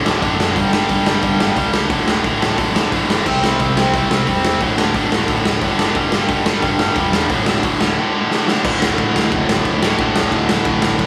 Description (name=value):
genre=punk rock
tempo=178 BPM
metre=4/4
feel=straight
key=unclear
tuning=A4 = 441 Hz
part: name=tight distorted guitar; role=riff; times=0.0-11.1 s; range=D2 to C4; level=-20 LUFS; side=equal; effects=distortion
part: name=tight distorted guitar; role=riff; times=0.0-11.1 s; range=D2 to C4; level=-24 LUFS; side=equal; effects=distortion
part: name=fuzz picked electric bass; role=bass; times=0.0-11.1 s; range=D1 to C#2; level=-27 LUFS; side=equal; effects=overdrive
part: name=raw garage drum kit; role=drums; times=0.1-11.1 s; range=crash cymbal, hi-hat, kick drum, snare drum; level=-21 LUFS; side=equal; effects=none
room=light reverb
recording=studio reverb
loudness=-17 LUFS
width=mono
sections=0.0-8.7 A section; 8.7-11.1 B section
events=drum fill 8.3-8.7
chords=0.0 D5; 0.6 G5; 1.9 D5; 3.3 C; 4.6 D5; 6.0 G5; 7.3 D5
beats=0.24 | 0.57 0.91 1.25 1.58 | 1.92 2.25 2.59 2.93 | 3.26 3.60 3.94 4.27 | 4.61 4.95 5.29 5.62 | 5.96 6.30 6.63 6.97 | 7.31 7.64 7.98 8.32 | 8.65 8.99 9.32 9.66 | 9.99 10.33 10.66 11.00